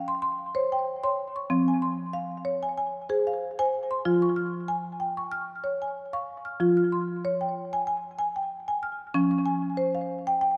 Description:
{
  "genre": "world meditative",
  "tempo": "94 BPM",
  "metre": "4/4",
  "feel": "swing 54% on 16ths",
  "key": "F hirajoshi",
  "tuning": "A4 = 440 Hz",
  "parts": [
    { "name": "marimba with medium mallets", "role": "solo", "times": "0.0-10.6 s", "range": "F3 to F6", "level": "-28 LUFS", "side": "equal", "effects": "tape echo" }
  ],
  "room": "wet concert hall reverb, RT60 2.1 s",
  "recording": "dark, warm production",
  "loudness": "-28 LUFS",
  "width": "mono",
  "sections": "0.0-6.6 A section; 6.6-10.6 B section",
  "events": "none",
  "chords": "0.0 Dbmaj7#11/F; 1.5 Fm",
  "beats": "0.23 0.86 | 1.50 2.14 2.77 3.41 | 4.05 4.68 5.32 5.96 | 6.59 7.23 7.87 8.51 | 9.14 9.78 10.42"
}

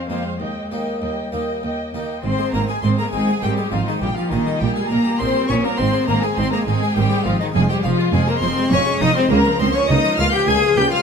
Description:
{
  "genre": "classical, baroque-style concerto movement with solo episodes",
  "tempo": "102 BPM",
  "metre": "3/4",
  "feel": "straight",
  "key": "Ab major",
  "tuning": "A4 = 441 Hz",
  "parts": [
    { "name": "warm cello", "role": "melody", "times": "0.0-11.0 s", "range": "Eb3 to Ab4", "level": "-22 LUFS", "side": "left 3 dB", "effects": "none" },
    { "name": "warm chamber violin section", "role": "melody", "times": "0.0-11.0 s", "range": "Eb5 to Ab6", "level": "-26 LUFS", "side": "left 3 dB", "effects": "none" },
    { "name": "warm symphonic violin section", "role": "second line", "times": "0.0-11.0 s", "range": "Eb4 to Ab5", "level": "-24 LUFS", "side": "left 2 dB", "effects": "none" },
    { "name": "harpsichord", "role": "accompaniment", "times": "0.0-11.0 s", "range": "Db2 to Eb5", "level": "-27 LUFS", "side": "equal", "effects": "none" },
    { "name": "rich chamber viola section", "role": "accompaniment", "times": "0.0-11.0 s", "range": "F3 to Eb5", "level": "-28 LUFS", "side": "right 4 dB", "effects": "none" },
    { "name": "warm symphonic cello section", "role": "bass", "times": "0.1-10.9 s", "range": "Db2 to Bb2", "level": "-24 LUFS", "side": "right 3 dB", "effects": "none" },
    { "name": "clear chamber double bass section", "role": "bass", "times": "2.2-10.8 s", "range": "F1 to Db2", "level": "-24 LUFS", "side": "right 3 dB", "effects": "none" }
  ],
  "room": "moderate recital hall reverb, RT60 1.4 s",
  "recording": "none",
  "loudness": "-16 LUFS",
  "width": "side -6 dB against mid",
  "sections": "0.0-2.2 A section; 2.2-11.0 B section",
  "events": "none",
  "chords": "0.4 Eb; 2.2 Ab; 4.0 Eb/Bb; 5.8 Ab; 7.5 Fm; 9.3 Bbm/Db",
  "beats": "| 0.40 1.01 1.62 | 2.23 2.83 3.42 | 4.01 4.61 5.20 | 5.79 6.37 6.96 | 7.55 8.13 8.71 | 9.30 9.89 10.47"
}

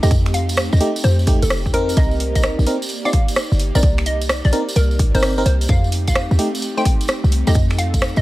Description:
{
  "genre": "UK garage, two-step garage",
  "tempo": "129 BPM",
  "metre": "4/4",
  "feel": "swing 66% on 16ths",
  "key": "unclear",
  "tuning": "A4 = 440 Hz",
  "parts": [
    { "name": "hollow square pluck", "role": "melody", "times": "0.0-8.2 s", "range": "A4 to G5", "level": "-25 LUFS", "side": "equal", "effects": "chorus" },
    { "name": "airy breathy pad", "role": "sustained chords", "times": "0.0-8.2 s", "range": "A3 to D5", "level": "-28 LUFS", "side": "equal", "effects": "chorus, sidechain pumping" },
    { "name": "FM electric piano", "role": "stabs", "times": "0.0-7.5 s", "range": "A3 to D5", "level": "-23 LUFS", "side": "right 1 dB", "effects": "chorus" },
    { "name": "short 808-style bass", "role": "bass", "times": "0.0-8.2 s", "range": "F1 to F2", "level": "-17 LUFS", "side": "equal", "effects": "sidechain pumping" },
    { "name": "tambourine", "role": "percussion", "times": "0.0-8.2 s", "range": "none", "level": "-31 LUFS", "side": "right 2 dB", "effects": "none" },
    { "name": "electronic kick drum", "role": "drums", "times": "0.1-8.0 s", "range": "none", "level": "-17 LUFS", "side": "equal", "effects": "none" },
    { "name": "garage drum kit", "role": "drums", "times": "0.1-8.1 s", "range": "finger snaps, hi-hat, rim click", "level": "-23 LUFS", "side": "equal", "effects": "overdrive" }
  ],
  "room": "little or no reverb",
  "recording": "vinyl crackle",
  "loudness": "-15 LUFS",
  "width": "side -17 dB against mid",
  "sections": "0.0-8.2 A section",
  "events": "none",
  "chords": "0.0 F9; 2.0 Cm7; 5.7 F9",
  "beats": "| 0.11 0.57 1.04 1.50 | 1.97 2.44 2.90 3.37 | 3.83 4.29 4.76 5.23 | 5.69 6.16 6.62 7.09 | 7.55 8.02"
}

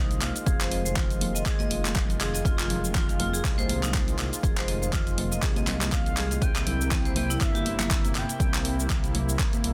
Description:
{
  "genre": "afro house",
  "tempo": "121 BPM",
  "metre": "4/4",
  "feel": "swing 56% on 16ths",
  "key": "unclear",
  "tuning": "A4 = 440 Hz",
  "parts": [
    { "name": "expressive portamento lead", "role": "melody", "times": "0.0-1.0, 5.9-8.9 s", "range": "Eb5 to G5", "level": "-39 LUFS", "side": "equal", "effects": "subtle chorus, digital delay" },
    { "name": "warm analog pad", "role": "sustained chords", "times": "0.0-9.7 s", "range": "C3 to F4", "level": "-38 LUFS", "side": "equal", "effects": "chorus, sidechain pumping" },
    { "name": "dark detuned saw bass", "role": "bass", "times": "0.0-9.7 s", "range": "F1 to C2", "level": "-33 LUFS", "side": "equal", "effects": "sidechain pumping" },
    { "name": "deep house drum kit", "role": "drums", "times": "0.1-9.7 s", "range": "handclaps, hi-hat, shaker, toms", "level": "-33 LUFS", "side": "equal", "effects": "none" },
    { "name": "congas", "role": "percussion", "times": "0.2-9.6 s", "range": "none", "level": "-37 LUFS", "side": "equal", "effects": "none" },
    { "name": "marimba with hard mallets", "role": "arpeggios", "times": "0.5-7.9 s", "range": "Bb3 to F5", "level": "-37 LUFS", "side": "equal", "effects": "sidechain pumping, digital delay" },
    { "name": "electronic kick drum", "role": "drums", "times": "0.5-9.5 s", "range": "none", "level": "-29 LUFS", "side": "equal", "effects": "none" }
  ],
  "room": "little or no reverb",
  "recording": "dense, heavily limited modern master",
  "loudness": "-26 LUFS",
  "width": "mono",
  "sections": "0.0-9.7 A section",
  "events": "none",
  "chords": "0.0 Fm7; 6.4 C7",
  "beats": "| 0.47 0.96 1.46 1.96 | 2.45 2.95 3.44 3.94 | 4.43 4.93 5.43 5.92 | 6.42 6.91 7.41 7.91 | 8.40 8.90 9.39"
}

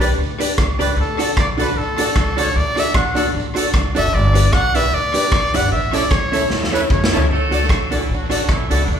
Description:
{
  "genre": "ska",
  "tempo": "152 BPM",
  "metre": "4/4",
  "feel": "swing 56% on 8ths",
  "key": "D major",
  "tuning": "A4 = 437 Hz",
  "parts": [
    { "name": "bright trumpet", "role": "melody", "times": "0.0-7.3 s", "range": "A4 to F#5", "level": "-21 LUFS", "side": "equal", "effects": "tube saturation" },
    { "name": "archtop guitar, miked and amplified", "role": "accompaniment", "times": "0.0-8.8 s", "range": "C#4 to D5", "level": "-22 LUFS", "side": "right 2 dB", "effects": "tape echo" },
    { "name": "percussive tonewheel organ", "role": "stabs", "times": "0.0-8.8 s", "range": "C#4 to D5", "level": "-25 LUFS", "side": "left 3 dB", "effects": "chorus vibrato, slow rotary speaker" },
    { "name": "upright bass", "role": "bass", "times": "0.0-9.0 s", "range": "F#1 to E2", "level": "-22 LUFS", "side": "equal", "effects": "none" },
    { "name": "raw garage drum kit", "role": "drums", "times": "0.0-8.8 s", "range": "hi-hat, kick drum, rim click, snare drum, toms", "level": "-19 LUFS", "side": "equal", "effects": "tape echo" },
    { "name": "tambourine", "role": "percussion", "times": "0.0-8.8 s", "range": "none", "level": "-36 LUFS", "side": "right 5 dB", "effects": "none" },
    { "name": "clear horn section", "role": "melody", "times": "7.3-9.0 s", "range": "D3 to A4", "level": "-25 LUFS", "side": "right 1 dB", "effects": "none" }
  ],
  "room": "moderate large studio reverb, RT60 1.2 s",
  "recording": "band playing live in one room",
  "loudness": "-15 LUFS",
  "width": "side -8 dB against mid",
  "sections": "0.0-7.3 A section; 7.3-9.0 B section",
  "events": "trumpet solo 0.0-7.3; drum fill 6.5-7.3",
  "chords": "0.0 G; 1.0 D; 4.1 G; 5.7 A; 7.3 D",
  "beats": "0.18 0.58 | 0.97 1.37 1.76 2.16 | 2.55 2.95 3.34 3.74 | 4.13 4.53 4.92 5.32 | 5.71 6.11 6.50 6.90 | 7.30 7.69 8.09 8.49 | 8.88"
}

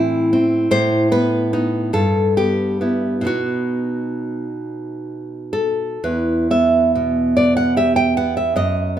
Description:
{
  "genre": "romantic piece for solo classical guitar",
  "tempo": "39-53 BPM (dotted quarters)",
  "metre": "6/8",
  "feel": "rubato",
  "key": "E minor",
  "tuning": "A4 = 440 Hz",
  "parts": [
    { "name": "nylon-string guitar", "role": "solo", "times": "0.0-9.0 s", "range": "E2 to G5", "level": "-16 LUFS", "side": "right 1 dB", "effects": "none" }
  ],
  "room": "moderate recital hall reverb, RT60 1.6 s",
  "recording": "minimal, uncompressed stereo recording",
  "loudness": "-16 LUFS",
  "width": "side -10 dB against mid",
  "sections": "0.0-9.0 A section",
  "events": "none",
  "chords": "0.0 Am; 0.7 B7/A; 1.9 Em/G; 3.3 B; 6.0 Em",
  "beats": "| 0.72 1.94 | 3.27 4.62 | 6.05 7.38 | 8.58"
}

